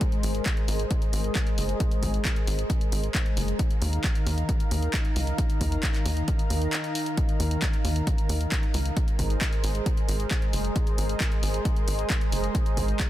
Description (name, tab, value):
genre	uplifting trance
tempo	134 BPM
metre	4/4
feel	straight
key	unclear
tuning	A4 = 439 Hz
part	lush unison pad	sustained chords	0.0-13.1 s	Eb3 to Bb5	-31 LUFS	equal	chorus, sidechain pumping
part	electronic kick drum	drums	0.0-13.1 s	none	-26 LUFS	equal	none
part	punchy analog drum machine	drums	0.0-13.1 s	handclaps, hi-hat	-33 LUFS	left 1 dB	none
part	tight sequencer bass	bass	0.2-12.9 s	Gb1 to Eb2	-27 LUFS	equal	sidechain pumping
room	little or no reverb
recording	dense, heavily limited modern master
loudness	-23 LUFS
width	side -14 dB against mid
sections	0.0-13.1 A section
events	filter sweep on analog synth pad 0.0-13.1; break 6.7-7.2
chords	0.0 Abadd9; 3.6 Ebsus2; 9.0 Abadd9